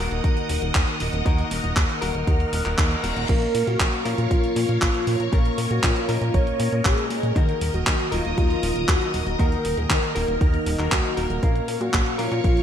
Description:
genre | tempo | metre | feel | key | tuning
italo disco | 118 BPM | 4/4 | straight | unclear | A4 = 439 Hz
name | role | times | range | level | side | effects
phased string machine | sustained chords | 0.0-12.6 s | Bb4 to F6 | -30 LUFS | equal | ensemble chorus, phaser
direct-recorded clean electric guitar | stabs | 0.0-12.6 s | Bb2 to F5 | -30 LUFS | left 2 dB | spring reverb
chorused synth bass | bass | 0.0-12.6 s | Eb1 to Bb2 | -26 LUFS | equal | none
gated 80s digital drum machine | drums | 0.1-12.6 s | crash cymbal, handclaps, hi-hat | -27 LUFS | equal | gated reverb, small room ambience
electronic kick drum | drums | 0.2-12.5 s | none | -22 LUFS | equal | small room ambience
reverse cymbal | sound effects | 2.5-3.3 s | none | -35 LUFS | left 4 dB | none
wide unison lead | melody | 3.3-12.6 s | Eb4 to Db5 | -26 LUFS | equal | ping-pong delay
room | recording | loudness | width
moderate lush hall reverb, RT60 1.9 s, digital ambience | bright 1980s-style digital production | -20 LUFS | side -9 dB against mid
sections
0.0-12.6 A section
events
reverse cymbal 2.5-3.3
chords
0.0 Ebm; 3.3 Bbm; 7.4 Ebm; 11.4 Bbm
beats
0.24 0.75 | 1.26 1.77 2.27 2.78 | 3.29 3.80 4.31 4.82 | 5.33 5.83 6.34 6.85 | 7.36 7.87 8.38 8.88 | 9.39 9.90 10.41 10.92 | 11.43 11.94 12.44

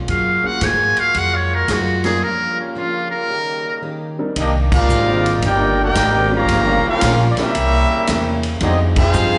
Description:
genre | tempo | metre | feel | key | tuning
jazz, big band swing | 113 BPM | 4/4 | swing 67% on 8ths | C minor from 4.4 s | A4 = 440 Hz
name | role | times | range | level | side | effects
brilliant trombone section | sustained chords | 0.0-9.4 s | C3 to D5 | -30 LUFS | equal | none
upright bass | bass | 0.0-9.4 s | G1 to Ab2 | -22 LUFS | equal | none
trumpet with metal mute | melody | 0.1-3.8 s | Db4 to Ab5 | -20 LUFS | equal | slapback echo
picked plugged-in steel-string acoustic guitar | accompaniment | 0.1-9.4 s | G2 to Ab4 | -31 LUFS | equal | slapback echo
swinging big-band drum kit | drums | 0.1-9.3 s | crash cymbal, hi-hat, kick drum, ride cymbal, snare drum | -26 LUFS | equal | none
dark baby grand piano | accompaniment | 0.4-9.4 s | Gb3 to G5 | -27 LUFS | equal | none
clear trumpet section | melody | 4.4-9.4 s | Bb3 to Bb5 | -21 LUFS | equal | slapback echo
warm trombone section | second line | 4.4-9.4 s | Db3 to Ab4 | -24 LUFS | equal | none
room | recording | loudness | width
light reverb, studio reverb | live gig heard through the venue's PA, club reverb, nothing above 11.0 kHz | -17 LUFS | mono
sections
0.0-4.4 A section; 4.4-9.4 B section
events
muted trumpet solo 0.0-4.4; break 2.2-4.4; band accent 4.6, 8.9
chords
0.1 Gbmaj9; 2.2 Gm7b5; 3.3 Eb7; 4.4 Cm9; 6.5 Gm7b5; 7.5 C7b9; 8.6 Fm9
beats
| 0.09 0.63 1.16 1.70 | 2.23 2.76 3.29 3.83 | 4.36 4.89 5.42 5.96 | 6.49 7.02 7.55 8.08 | 8.61 9.14

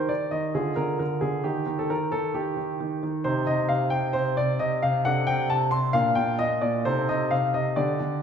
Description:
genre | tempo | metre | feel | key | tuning
classical-period piano sonatina | 133 BPM | 4/4 | rubato | unclear | A4 = 438 Hz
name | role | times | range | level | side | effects
clear grand piano | solo | 0.0-8.2 s | Bb2 to C6 | -23 LUFS | equal | none
room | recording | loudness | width
wet concert hall reverb, RT60 1.9 s | recorded in a church or concert hall | -23 LUFS | side -7 dB against mid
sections
0.0-8.2 A section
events
none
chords
0.0 Eb; 0.6 Ddim; 1.5 N.C.; 3.2 Cm; 5.1 D5/C; 5.9 Bbadd11; 6.9 Adim/C; 7.8 G5/D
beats
0.10 0.55 1.00 | 1.45 1.91 2.36 2.80 | 3.25 3.70 4.15 4.60 | 5.05 5.50 5.95 6.40 | 6.86 7.31 7.76 8.22

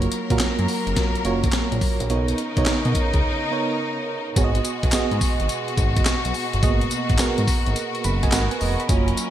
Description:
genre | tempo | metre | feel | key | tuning
R&B, new jack swing | 106 BPM | 4/4 | swing 66% on 16ths | G# dorian | A4 = 440 Hz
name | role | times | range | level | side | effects
FM electric piano with tremolo | accompaniment | 0.0-9.3 s | A#3 to B5 | -26 LUFS | right 5 dB | none
clear studio string section | sustained chords | 0.0-9.3 s | B2 to A#4 | -27 LUFS | left 3 dB | none
fat analog bass | bass | 0.0-9.1 s | E#1 to B2 | -24 LUFS | equal | none
breakbeat sampler-style drum kit | drums | 0.0-9.3 s | handclaps, hi-hat, kick drum, snare drum, tambourine | -22 LUFS | equal | gated reverb
room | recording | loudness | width
light reverb | bright 1980s-style digital production | -19 LUFS | side -11 dB against mid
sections
0.0-4.4 A section; 4.4-9.3 B section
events
break 3.2-4.4; FM electric piano fill 7.8-8.9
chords
0.0 F#maj7; 2.1 Bmaj9; 4.4 G#m7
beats
0.40 0.97 1.53 | 2.10 2.66 3.23 3.80 | 4.36 4.93 5.50 6.06 | 6.63 7.19 7.76 8.32 | 8.89

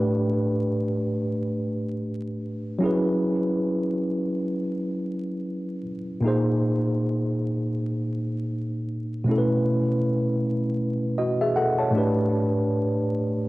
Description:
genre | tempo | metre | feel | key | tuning
hip hop | free time | none | none | unclear | A4 = 439 Hz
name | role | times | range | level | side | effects
tine electric piano | solo | 0.0-13.5 s | A2 to A5 | -23 LUFS | equal | overdrive, fast stereo tremolo, low-pass filter, analog delay
room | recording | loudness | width
moderate spring reverb, RT60 2.4 s | worn, warbling old tape, cassette tape, vinyl crackle, warbly pitch drift | -23 LUFS | side -19 dB against mid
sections
0.0-13.5 A section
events
none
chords
0.0 A9sus4; 2.8 F#9sus4; 6.2 A#9sus4; 9.3 B9sus4; 11.9 A9sus4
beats
free time

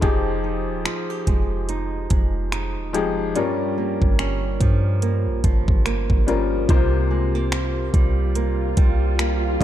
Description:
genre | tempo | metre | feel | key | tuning
contemporary R&B | 72 BPM | 4/4 | swing 58% on 16ths | F minor | A4 = 440 Hz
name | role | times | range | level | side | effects
warm baby grand piano | accompaniment | 0.0-9.6 s | C3 to C5 | -26 LUFS | left 6 dB | none
flamenco guitar | arpeggios | 0.0-9.6 s | G2 to G4 | -28 LUFS | right 8 dB | tape echo
clean 808-style bass | bass | 0.0-9.6 s | Eb1 to G2 | -23 LUFS | equal | none
smooth R&B drum kit | drums | 0.0-9.6 s | finger snaps, hi-hat, kick drum | -21 LUFS | equal | overdrive
swell | sound effects | 7.6-9.6 s | none | -30 LUFS | left 1 dB | none
room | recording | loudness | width
digital ambience | dark, warm production | -19 LUFS | side -12 dB against mid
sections
0.0-9.6 A section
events
swell 7.6-9.6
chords
0.0 Fm9; 3.4 Gm7b5; 6.7 C7sus4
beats
| 0.02 0.86 1.69 2.52 | 3.36 4.19 5.02 5.86 | 6.69 7.52 8.36 9.19

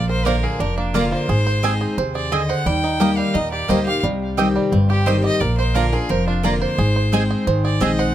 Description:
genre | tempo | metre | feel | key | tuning
bluegrass | 175 BPM | 4/4 | straight | unclear | A4 = 440 Hz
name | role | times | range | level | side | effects
clear fiddle | melody | 0.0-8.1 s | D4 to G5 | -25 LUFS | left 1 dB | tape echo
picked steel-string acoustic guitar | accompaniment | 0.0-8.1 s | F2 to Ab4 | -21 LUFS | left 2 dB | none
bluegrass banjo | arpeggios | 0.0-8.1 s | G3 to C5 | -25 LUFS | right 6 dB | tape echo
upright bass | bass | 0.0-8.1 s | F1 to Eb2 | -22 LUFS | equal | none
mandolin | stabs | 0.3-7.9 s | Bb3 to Bb5 | -22 LUFS | right 6 dB | none
room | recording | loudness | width
little or no reverb | close, detailed microphones | -17 LUFS | side -12 dB against mid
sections
0.0-8.1 A section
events
none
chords
0.0 Bb; 1.3 Ab; 2.7 Eb; 4.0 Cm; 5.4 Bb; 6.8 Ab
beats
0.26 0.60 0.95 | 1.29 1.64 1.98 2.32 | 2.67 3.01 3.35 3.69 | 4.04 4.38 4.72 5.07 | 5.41 5.75 6.10 6.44 | 6.79 7.13 7.47 7.82

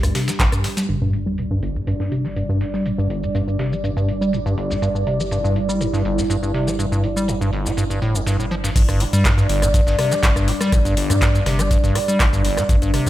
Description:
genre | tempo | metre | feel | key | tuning
acid house | 122 BPM | 4/4 | straight | unclear | A4 = 440 Hz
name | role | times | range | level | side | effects
dark analog pad | sustained chords | 0.0-13.1 s | G3 to D5 | -24 LUFS | equal | chorus, phaser, sidechain pumping
acid bass, square | riff | 0.0-13.1 s | G1 to G3 | -21 LUFS | equal | tube saturation, sidechain pumping, analog delay
round analog bass | bass | 0.0-13.1 s | G1 to G2 | -25 LUFS | equal | sidechain pumping
electro analog drum machine | drums | 0.0-13.1 s | crash cymbal, handclaps, hi-hat, rim click, shaker | -26 LUFS | left 1 dB | low-pass filter on hats, low-pass filter on perc, low-pass filter on snare, low-pass filter on cymbals
dusty soul sampler-style drum kit | drums | 0.1-13.1 s | hi-hat, snare drum | -35 LUFS | equal | high-pass filter on hats, low-pass filter on hats, high-pass filter on snare, low-pass filter on snare
electronic kick drum | drums | 0.4-0.5, 8.8-12.8 s | none | -18 LUFS | equal | none
sub drop | sound effects | 0.9-2.9 s | none | -30 LUFS | equal | none
room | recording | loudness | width
moderate plate reverb, RT60 1.1 s | dreamy mix soaked in reverb | -17 LUFS | side -14 dB against mid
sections
0.9-8.8 A section; 8.8-13.1 B section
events
impact 0.9-2.9; filter sweep on acid bass 0.9-8.8; drop 8.8-13.1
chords
0.0 G5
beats
0.40 | 0.89 1.38 1.87 2.36 | 2.86 3.35 3.84 4.33 | 4.82 5.32 5.81 6.30 | 6.79 7.28 7.77 8.27 | 8.76 9.25 9.74 10.23 | 10.72 11.22 11.71 12.20 | 12.69

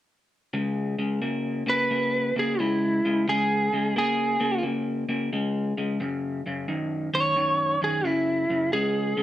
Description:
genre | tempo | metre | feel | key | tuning
blues | 88 BPM | 4/4 | swing 66% on 8ths | unclear | A4 = 440 Hz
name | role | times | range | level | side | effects
electric guitar through a small old amp | riff | 0.5-9.2 s | Gb2 to Bb3 | -26 LUFS | left 2 dB | none
lightly driven lead guitar | melody | 1.7-9.2 s | Fb4 to Db5 | -23 LUFS | right 1 dB | plate reverb
room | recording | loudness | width
moderate studio reverb, RT60 0.6 s | none | -23 LUFS | side -13 dB against mid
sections
0.5-9.2 A section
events
lead electric guitar solo 0.5-9.2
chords
0.5 Db5; 6.0 Gb5; 8.7 Db5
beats
| 0.54 1.22 1.90 2.58 | 3.27 3.95 4.63 5.31 | 5.99 6.67 7.35 8.03 | 8.71

